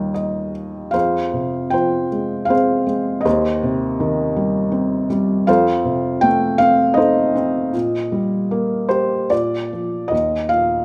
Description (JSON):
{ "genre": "classical, lyrical solo piano", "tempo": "73-82 BPM", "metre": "3/4", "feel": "rubato", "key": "unclear", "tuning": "A4 = 440 Hz", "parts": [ { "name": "felt-muted upright piano", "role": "solo", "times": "0.0-10.8 s", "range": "Eb2 to G5", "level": "-19 LUFS", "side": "equal", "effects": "none" } ], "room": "light reverb", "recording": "none", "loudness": "-19 LUFS", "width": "mono", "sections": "0.9-10.1 A section", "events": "felt piano fill 0.0-0.9", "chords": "0.0 Eb; 0.9 Fm; 3.3 Cm/Eb; 5.5 F7; 7.7 Eb/Bb; 9.3 Bb; 10.1 Eb5" }